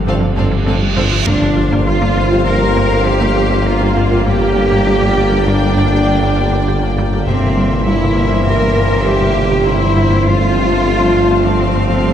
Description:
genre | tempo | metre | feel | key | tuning
cinematic, hybrid orchestral and electronic film score | 100 BPM | 5/4 | straight | unclear | A4 = 440 Hz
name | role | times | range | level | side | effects
granular cloud pad | sustained chords | 0.0-12.1 s | D3 to Bb4 | -24 LUFS | right 1 dB | none
punchy sub bass | bass | 0.0-12.1 s | G1 | -21 LUFS | equal | none
reverse cymbal and impact | sound effects | 0.2-4.3 s | none | -23 LUFS | right 2 dB | none
rich symphonic violin section | melody | 0.1-12.1 s | E5 to G5 | -25 LUFS | left 1 dB | none
rich chamber violin section | second line | 0.1-12.1 s | A4 to D5 | -24 LUFS | left 5 dB | none
rich symphonic viola section | accompaniment | 0.1-12.1 s | A3 to C4 | -24 LUFS | left 2 dB | none
clear trombone section | sustained chords | 0.1-12.1 s | C3 to Bb3 | -24 LUFS | right 2 dB | none
mellow French horn section | sustained chords | 0.1-12.1 s | C4 to Bb4 | -22 LUFS | left 2 dB | none
smooth synth bass | riff | 0.1-12.1 s | G2 to G3 | -21 LUFS | left 2 dB | none
dark symphonic double bass section | bass | 0.1-12.1 s | G1 to G2 | -21 LUFS | equal | none
rich symphonic cello section | bass | 0.1-12.1 s | G2 to Bb4 | -18 LUFS | right 2 dB | none
warm tuba | bass | 0.1-12.1 s | G1 | -20 LUFS | right 2 dB | none
resonant blip pluck | arpeggios | 0.2-12.1 s | C3 to Bb4 | -25 LUFS | right 1 dB | none
room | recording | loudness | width
wet scoring stage reverb, RT60 1.6 s | heard from further back in the room | -11 LUFS | side -9 dB against mid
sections
0.0-1.3 A section; 1.3-12.1 B section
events
reverse cymbal 0.2-1.3; impact 1.3-4.3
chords
0.0 Fadd9/G; 1.3 Bbadd9/G; 4.3 Gm; 7.3 C7/G; 10.3 Fadd9/G

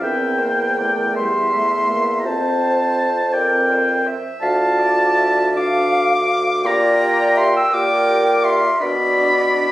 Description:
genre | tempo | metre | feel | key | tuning
classical, slow romantic movement for wind quintet | 55 BPM (dotted quarters) | 6/8 | rubato | F major | A4 = 440 Hz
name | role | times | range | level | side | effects
mellow hollow concert flute | melody | 0.0-9.7 s | Bb4 to G5 | -24 LUFS | left 2 dB | none
warm oboe | second line | 0.0-9.7 s | G5 to E6 | -18 LUFS | equal | none
clear clarinet | accompaniment | 0.0-9.7 s | Bb4 to G5 | -26 LUFS | right 2 dB | none
mellow French horn | accompaniment | 0.0-9.7 s | G3 to G4 | -27 LUFS | equal | none
mellow bassoon | bass | 0.0-9.7 s | D2 to B2 | -20 LUFS | right 1 dB | none
room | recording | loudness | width
moderate recital hall reverb, RT60 1.3 s | recorded on a phone in the room, studio reverb, compression | -15 LUFS | side -16 dB against mid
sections
0.0-9.7 A section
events
none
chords
0.0 C7/E; 2.3 F; 4.4 Dm; 6.6 Gm/Bb; 8.8 Bm

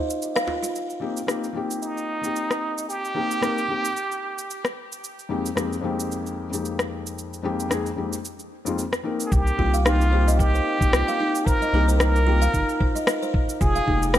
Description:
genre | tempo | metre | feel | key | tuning
organic downtempo | 112 BPM | 4/4 | swing 55% on 16ths | unclear | A4 = 440 Hz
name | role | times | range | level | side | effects
buzzing kalimba | arpeggios | 0.0-0.7, 9.6-14.2 s | Eb4 to F5 | -27 LUFS | right 1 dB | digital delay
electronic cabasa and rim click | drums | 0.1-14.2 s | none | -27 LUFS | left 1 dB | overdrive
djembe | percussion | 0.5-0.6 s | none | -32 LUFS | equal | none
felt-muted upright piano | accompaniment | 1.0-14.2 s | F2 to Bb4 | -28 LUFS | left 4 dB | sidechain pumping, digital delay
trumpet with plunger mute | melody | 1.8-4.7, 9.3-14.2 s | Eb4 to Bb4 | -26 LUFS | right 1 dB | vintage 12-bit sampler grit, ping-pong delay
round analog bass | bass | 9.3-14.2 s | F1 to C2 | -20 LUFS | equal | sidechain pumping
electronic kick drum | drums | 9.3-14.0 s | none | -23 LUFS | equal | none
room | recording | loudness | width
light reverb, studio ambience | lossy compression artefacts | -21 LUFS | side -12 dB against mid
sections
0.7-9.3 A section; 9.3-14.2 B section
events
break 0.0-0.7; band accent 0.3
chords
0.0 N.C.; 0.7 Cm7; 5.0 Fm11; 9.3 Cm7; 13.6 Fm11

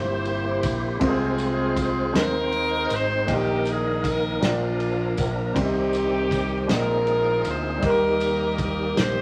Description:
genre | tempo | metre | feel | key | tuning
slow gospel | 53 BPM (dotted quarters) | 6/8 | straight | Eb major | A4 = 444 Hz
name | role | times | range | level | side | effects
warm saxophone section | melody | 0.0-9.2 s | Bb3 to C5 | -28 LUFS | equal | none
clear grand piano | accompaniment | 0.0-9.2 s | Bb2 to G5 | -31 LUFS | equal | none
tonewheel organ | sustained chords | 0.0-9.2 s | Eb3 to C5 | -30 LUFS | equal | slow rotary speaker, chorus vibrato
fingered electric bass with an envelope filter | bass | 0.0-9.2 s | G1 to Eb2 | -32 LUFS | equal | none
natural country drum kit | drums | 0.3-9.1 s | kick drum, ride cymbal, snare drum | -32 LUFS | equal | none
tambourine | percussion | 0.6-9.2 s | none | -46 LUFS | equal | none
room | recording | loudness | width
moderate studio reverb, RT60 0.8 s | vinyl crackle | -23 LUFS | mono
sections
0.0-9.2 A section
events
none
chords
0.0 C7; 1.0 Fm/C; 2.1 Ab/Eb; 3.3 Eb/Bb; 4.4 Bb; 5.6 Cm; 6.7 Bb9sus4; 7.8 Eb

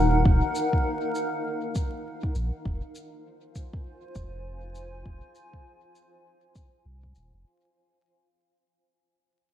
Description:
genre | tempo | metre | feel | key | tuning
ambient dub | 100 BPM | 4/4 | swing 59% on 16ths | unclear | A4 = 440 Hz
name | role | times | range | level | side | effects
granular cloud pad | sustained chords | 0.0-7.5 s | Eb4 to Ab5 | -28 LUFS | equal | built-in reverb
warm sub bass | bass | 0.0-7.4 s | Eb1 to C2 | -27 LUFS | equal | none
electronic kick drum | drums | 0.3-7.1 s | none | -26 LUFS | equal | studio reverb
shaker | drums | 0.6-7.3 s | none | -44 LUFS | left 2 dB | overdrive, studio reverb, dub echo
room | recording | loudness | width
light reverb | dark, warm production, vinyl crackle | -24 LUFS | side -11 dB against mid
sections
0.0-7.5 A section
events
fade-out 0.0-7.5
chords
0.0 Ebmadd9; 2.7 Fm7

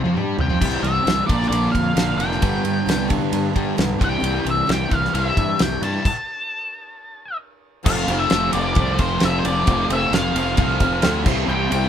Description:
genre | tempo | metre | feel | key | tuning
classic rock | 132 BPM | 4/4 | straight | unclear | A4 = 441 Hz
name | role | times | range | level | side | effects
overdriven semi-hollow guitar | riff | 0.0-11.9 s | F2 to G4 | -25 LUFS | right 5 dB | spring reverb
sludgy distorted guitar | riff | 0.0-11.9 s | F2 to F4 | -27 LUFS | left 7 dB | overdrive
fuzz fingered electric bass | bass | 0.0-11.9 s | F1 to G2 | -24 LUFS | equal | overdrive
damped 70s drum kit | drums | 0.1-11.8 s | crash cymbal, kick drum, ride cymbal, snare drum, toms | -23 LUFS | equal | none
octave-fuzz lead guitar | melody | 0.4-11.9 s | C5 to A5 | -23 LUFS | left 1 dB | wah, distortion
picked steel-string acoustic guitar | accompaniment | 0.6-11.9 s | G2 to Bb4 | -33 LUFS | left 5 dB | none
honky-tonk upright piano | accompaniment | 7.9-11.9 s | C4 to C6 | -31 LUFS | left 2 dB | none
room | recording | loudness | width
light reverb | band playing live in one room | -17 LUFS | side -9 dB against mid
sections
0.6-7.9 A section; 7.9-11.9 B section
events
drum fill 0.0-0.6; stop 6.0-7.9; honky-tonk piano fill 10.6-11.5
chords
0.0 G5; 0.6 C; 1.3 Bb; 2.4 G; 4.0 C; 6.0 N.C.; 7.9 F; 11.3 C

